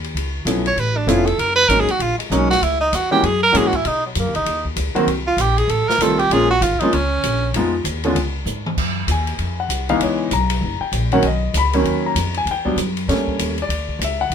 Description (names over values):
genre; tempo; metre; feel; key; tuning
jazz, small-group swing and bop; 195 BPM; 4/4; swing 62% on 8ths; unclear; A4 = 441 Hz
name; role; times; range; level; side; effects
upright bass; bass; 0.0-14.3 s; F1 to B2; -23 LUFS; equal; none
open jazz drum kit; drums; 0.0-14.3 s; crash cymbal, hi-hat, kick drum, ride cymbal, snare drum, toms; -26 LUFS; left 2 dB; none
warm concert grand piano; accompaniment; 0.5-14.3 s; D3 to B5; -19 LUFS; left 1 dB; none
bright tenor saxophone; second line; 0.7-7.5 s; F#3 to Db5; -17 LUFS; right 2 dB; none
room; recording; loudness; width
light reverb; minimal, uncompressed stereo recording; -16 LUFS; side -8 dB against mid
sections
0.0-8.8 A section; 8.8-14.3 A section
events
tenor saxophone solo 0.0-8.8; drum fill 8.5-8.8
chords
0.2 Db7alt; 1.4 Gb69; 2.6 Dbm; 3.2 Gb9; 3.8 Badd9; 5.1 Abmaj13 (rootless); 5.7 F7; 6.3 Bbm7; 7.5 Fm7b5; 8.2 Db5; 8.8 F#sus2; 10.0 C#m7; 10.6 F#; 11.2 Bmaj9; 12.5 Em7; 13.1 D#7#11; 13.7 Dmaj7